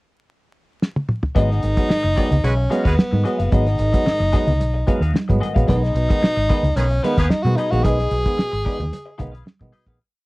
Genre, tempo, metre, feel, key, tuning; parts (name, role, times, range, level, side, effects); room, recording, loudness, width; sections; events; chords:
funk; 111 BPM; 4/4; straight; G# dorian; A4 = 438 Hz
cloth-damped thuddy drum kit; drums; 0.8-10.0 s; hi-hat, kick drum, snare drum, toms; -19 LUFS; equal
clean electric guitar; accompaniment; 1.3-10.0 s; B3 to E#5; -30 LUFS; left 5 dB; wah, lush chorus
breathy tenor saxophone; melody; 1.4-9.4 s; B3 to G#4; -23 LUFS; equal
mellow clav; stabs; 1.4-10.0 s; G#2 to B3; -24 LUFS; right 2 dB
vintage muted fingered electric bass; bass; 1.4-10.0 s; F#1 to B2; -20 LUFS; equal
congas; percussion; 1.4-9.7 s; -27 LUFS; right 2 dB
warm horn section; second line; 2.4-2.9, 6.8-7.3 s; D#3 to B4; -25 LUFS; right 2 dB
little or no reverb; dry, close 1970s-style studio recording, vinyl crackle; -16 LUFS; side -22 dB against mid
0.0-1.4 pickup bar; 1.4-10.0 groove
drum fill 0.8-1.4; fade-out 7.8-10.0
0.0 N.C.; 1.4 G#m7; 5.7 B6